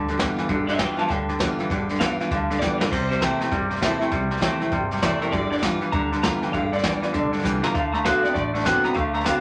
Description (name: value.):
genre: rockabilly.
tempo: 199 BPM.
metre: 4/4.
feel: swing 63% on 8ths.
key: G mixolydian.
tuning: A4 = 440 Hz.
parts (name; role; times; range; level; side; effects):
picked steel-string acoustic guitar; accompaniment; 0.0-9.4 s; G2 to F#4; -30 LUFS; equal; none.
clean electric guitar; riff; 0.0-9.4 s; G2 to B3; -27 LUFS; equal; none.
upright bass; bass; 0.0-9.3 s; G1 to D2; -34 LUFS; equal; none.
vintage brush drum kit; drums; 0.1-9.3 s; crash cymbal, hi-hat, kick drum, snare drum; -30 LUFS; equal; none.
electric guitar through a small old amp; melody; 0.7-9.4 s; G4 to Bb5; -30 LUFS; equal; tremolo.
room: moderate studio ambience, RT60 0.5 s.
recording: none.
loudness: -23 LUFS.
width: mono.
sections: 0.0-9.4 A section.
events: clean electric guitar solo 0.0-9.4; drum fill 2.6-2.9, 7.4-7.7.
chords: 0.0 G7; 2.9 C7; 5.3 G7; 7.7 D7.